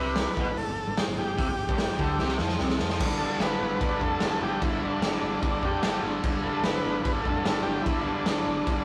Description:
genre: garage rock duo or trio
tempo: 148 BPM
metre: 4/4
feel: straight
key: G mixolydian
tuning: A4 = 440 Hz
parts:
  - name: overdriven combo organ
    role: melody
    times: 0.0-8.8 s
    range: D4 to B4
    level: -34 LUFS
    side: equal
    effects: none
  - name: fuzz guitar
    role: riff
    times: 0.0-8.8 s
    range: G2 to G3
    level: -32 LUFS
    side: equal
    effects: distortion
  - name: hollow-body short-scale picked electric bass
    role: bass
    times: 0.0-8.8 s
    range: F1 to F2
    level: -39 LUFS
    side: equal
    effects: none
  - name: raw garage drum kit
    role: drums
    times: 0.2-8.8 s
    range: crash cymbal, hi-hat, kick drum, snare drum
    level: -31 LUFS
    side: equal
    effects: none
room: moderate stone room reverb, RT60 1.2 s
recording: rough rehearsal-room recording, warm saturation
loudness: -27 LUFS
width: mono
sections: 0.0-3.0 A section; 3.0-8.8 B section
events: drum fill 2.2-3.0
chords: 0.0 G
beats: 0.16 0.57 0.97 | 1.38 1.78 2.19 2.59 | 3.00 3.40 3.81 4.21 | 4.61 5.02 5.42 5.83 | 6.23 6.64 7.04 7.45 | 7.85 8.26 8.66

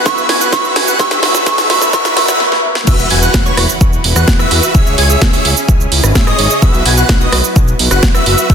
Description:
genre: EDM, festival progressive house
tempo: 128 BPM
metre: 4/4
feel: straight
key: E major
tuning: A4 = 440 Hz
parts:
  - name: warm grand piano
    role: accompaniment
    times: 0.0-2.9 s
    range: F#3 to B4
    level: -25 LUFS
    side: equal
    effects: sidechain pumping, dub echo
  - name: lush unison pad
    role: sustained chords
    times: 0.0-8.5 s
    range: A2 to B4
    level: -24 LUFS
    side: equal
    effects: chorus, sidechain pumping
  - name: plucky unison lead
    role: arpeggios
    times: 0.0-8.5 s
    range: C#6 to G#6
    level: -20 LUFS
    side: equal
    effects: sidechain pumping, dub echo
  - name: supersaw chords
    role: riff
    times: 0.0-8.5 s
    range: C#4 to G#5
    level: -17 LUFS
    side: equal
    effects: sidechain pumping, dub echo
  - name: riser, swell and impact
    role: sound effects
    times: 0.0-4.7 s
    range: none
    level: -22 LUFS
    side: right 1 dB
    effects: none
  - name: soft synth bell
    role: melody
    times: 0.1-2.3 s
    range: C#6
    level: -17 LUFS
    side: right 2 dB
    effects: chorus, dub echo
  - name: electronic kick drum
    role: drums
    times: 0.1-8.5 s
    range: none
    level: -11 LUFS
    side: equal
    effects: none
  - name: house drum kit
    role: drums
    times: 0.1-8.5 s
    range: crash cymbal, hi-hat, rim click, shaker, snare drum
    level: -15 LUFS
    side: right 2 dB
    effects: none
  - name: fat analog bass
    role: bass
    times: 2.9-8.5 s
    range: E1 to E2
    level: -15 LUFS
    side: equal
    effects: sidechain pumping
room: moderate digital room reverb, RT60 1.3 s, digital ambience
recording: dense, heavily limited modern master, high-pass filter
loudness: -9 LUFS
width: side -7 dB against mid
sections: 0.0-2.9 A section; 2.9-8.5 B section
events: build-up 0.0-2.9; drum fill 0.0-2.4, 2.4-2.9; riser 0.0-2.4; swell 1.9-2.9; drop 2.9-8.5; impact 2.9-4.7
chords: 0.0 Bsus4; 1.0 Aadd9; 2.9 Esus2; 4.7 C#m; 6.6 Bsus4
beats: 0.06 0.53 | 1.00 1.47 1.94 2.40 | 2.87 3.34 3.81 4.28 | 4.75 5.22 5.68 6.15 | 6.62 7.09 7.56 8.03 | 8.50

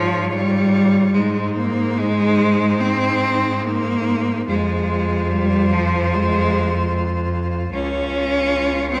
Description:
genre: classical, lyrical piece for cello ensemble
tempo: 73 BPM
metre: 4/4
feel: rubato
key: Ab major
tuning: A4 = 440 Hz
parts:
  - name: rich cello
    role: melody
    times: 0.0-9.0 s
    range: C5 to Db5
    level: -29 LUFS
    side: equal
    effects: none
  - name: clear cello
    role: second line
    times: 0.0-9.0 s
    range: Eb4 to F4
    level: -31 LUFS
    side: equal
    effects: none
  - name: clear cello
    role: accompaniment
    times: 0.0-9.0 s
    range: F3 to Db4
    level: -21 LUFS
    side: equal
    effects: none
  - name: rich cello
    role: bass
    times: 0.0-9.0 s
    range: Db2 to Ab2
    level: -26 LUFS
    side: equal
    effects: none
room: wet recital hall reverb, RT60 1.6 s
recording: vinyl crackle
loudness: -19 LUFS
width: mono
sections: 0.0-9.0 A section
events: none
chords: 0.0 Db/Ab; 1.1 Ab; 4.5 Fm; 7.7 Db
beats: 0.32 | 1.14 1.97 2.81 3.64 | 4.48 5.31 6.12 6.92 | 7.72 8.53

